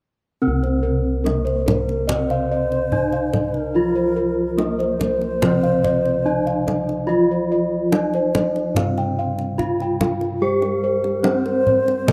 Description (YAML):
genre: Javanese gamelan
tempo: 72 BPM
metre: 4/4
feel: straight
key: C slendro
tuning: A4 = 440 Hz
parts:
  - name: gamelan-type bronze metallophone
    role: melody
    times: 0.4-12.1 s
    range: Bb3-25c to G4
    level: -26 LUFS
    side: equal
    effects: none
  - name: gamelan-type bronze metallophone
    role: accompaniment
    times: 0.4-12.1 s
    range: C3 to Bb3-25c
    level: -31 LUFS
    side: equal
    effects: none
  - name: gamelan-type bossed gongs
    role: arpeggios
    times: 0.4-12.1 s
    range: Bb4-25c to G5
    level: -26 LUFS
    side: equal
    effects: none
  - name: gamelan-type bossed gongs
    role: bass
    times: 0.4-12.1 s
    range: C2 to G4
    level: -27 LUFS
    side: equal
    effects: none
  - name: kendang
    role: percussion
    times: 0.6-12.1 s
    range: none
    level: -27 LUFS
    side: equal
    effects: none
  - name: low xiao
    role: second line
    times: 1.7-12.1 s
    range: Bb4-29c to Eb5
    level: -27 LUFS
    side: equal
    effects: none
room: moderate plate reverb, RT60 3.2 s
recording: rough home demo mix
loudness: -20 LUFS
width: mono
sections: 0.4-12.1 A section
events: none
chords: none